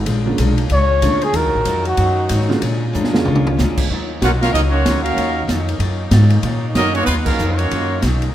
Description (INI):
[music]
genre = jazz, big band swing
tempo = 188 BPM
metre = 4/4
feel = swing 61% on 8ths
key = Eb minor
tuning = A4 = 441 Hz
[part]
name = upright bass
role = bass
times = 0.0-8.3 s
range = Bb1 to Bb2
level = -18 LUFS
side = equal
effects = none
[part]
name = picked steel-string acoustic guitar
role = accompaniment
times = 0.1-8.3 s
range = Bb2 to F4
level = -25 LUFS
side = left 2 dB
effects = none
[part]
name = clear saxophone section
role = sustained chords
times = 0.1-8.3 s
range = Eb3 to Gb4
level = -28 LUFS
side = left 1 dB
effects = none
[part]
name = open jazz drum kit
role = drums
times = 0.1-8.3 s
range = crash cymbal, hi-hat, kick drum, ride cymbal, snare drum, toms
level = -23 LUFS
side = equal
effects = none
[part]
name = warm grand piano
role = accompaniment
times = 0.3-3.6 s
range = D3 to F4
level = -24 LUFS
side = right 3 dB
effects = none
[part]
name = trumpet with bucket mute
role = melody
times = 0.7-2.3 s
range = Gb4 to C#5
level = -18 LUFS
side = equal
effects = none
[part]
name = bright trumpet section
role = melody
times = 4.2-8.0 s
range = Gb3 to Gb5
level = -20 LUFS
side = right 1 dB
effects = none
[part]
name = mellow trombone section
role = second line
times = 4.2-8.0 s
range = Db3 to Gb4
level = -23 LUFS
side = right 2 dB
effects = none
[sound]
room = light reverb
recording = none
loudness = -14 LUFS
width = side -12 dB against mid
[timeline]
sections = 0.0-3.9 A section; 3.9-8.3 B section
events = muted trumpet solo 0.0-3.9; drum fill 2.9-3.6; band accent 7.2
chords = 0.1 Bb7#9; 1.3 Ebm9; 2.6 Bb7#9; 3.9 Ebm9